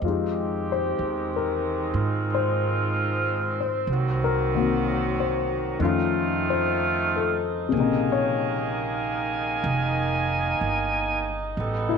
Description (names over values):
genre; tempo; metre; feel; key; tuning
jazz ballad; 62 BPM; 4/4; swing 68% on 8ths; F minor; A4 = 440 Hz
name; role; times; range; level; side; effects
dark concert grand piano; accompaniment; 0.0-12.0 s; C3 to Eb5; -26 LUFS; left 8 dB; none
mellow saxophone section; sustained chords; 0.0-12.0 s; Eb3 to Ab5; -26 LUFS; right 3 dB; none
upright bass; bass; 0.0-12.0 s; F1 to Ab2; -29 LUFS; right 3 dB; none
room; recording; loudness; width
moderate echo chamber reverb, RT60 1.6 s, small room reverb; none; -22 LUFS; side -6 dB against mid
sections
0.0-12.0 A section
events
none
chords
0.0 Fm9; 3.9 Cm7b5; 5.8 F7b13; 7.7 Bbm11